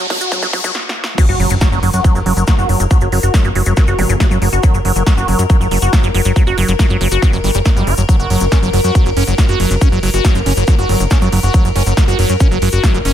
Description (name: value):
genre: psychedelic trance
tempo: 139 BPM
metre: 4/4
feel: straight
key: F# major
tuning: A4 = 439 Hz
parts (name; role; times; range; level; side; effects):
- evolving wavetable pad; sustained chords; 0.0-13.1 s; F#4 to A#4; -23 LUFS; left 2 dB; chorus, built-in reverb, sidechain pumping
- liquid acid bass; riff; 0.0-13.1 s; F#3 to F#4; -18 LUFS; right 1 dB; phaser, auto-pan, sidechain pumping, dub echo
- cabasa; percussion; 0.0-13.0 s; none; -29 LUFS; left 5 dB; none
- riser, impact and zap; sound effects; 0.0-4.1 s; none; -22 LUFS; equal; none
- big-room dance drum kit; drums; 0.1-13.1 s; crash cymbal, hi-hat, ride cymbal, snare drum; -23 LUFS; equal; none
- electronic kick drum; drums; 0.1-12.9 s; none; -13 LUFS; equal; high-pass filter on kick, high-pass filter on room
- plucky analog bass; bass; 1.3-13.1 s; F#1 to F#2; -15 LUFS; equal; none
room: little or no reverb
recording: high-pass filter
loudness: -11 LUFS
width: side -10 dB against mid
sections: 0.0-1.2 A section; 1.2-13.1 B section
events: build-up 0.0-1.2; drum fill 0.0-0.7, 0.7-1.2; riser 0.0-0.7; filter sweep on acid bass 0.0-1.2; stop 0.7-1.2; drop 1.2-13.1; impact 1.2-2.9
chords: 0.0 N.C.; 1.2 F#5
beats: 0.32 0.75 | 1.18 1.61 2.04 2.48 | 2.91 3.34 3.77 4.20 | 4.63 5.07 5.50 5.93 | 6.36 6.79 7.22 7.66 | 8.09 8.52 8.95 9.38 | 9.81 10.24 10.68 11.11 | 11.54 11.97 12.40 12.84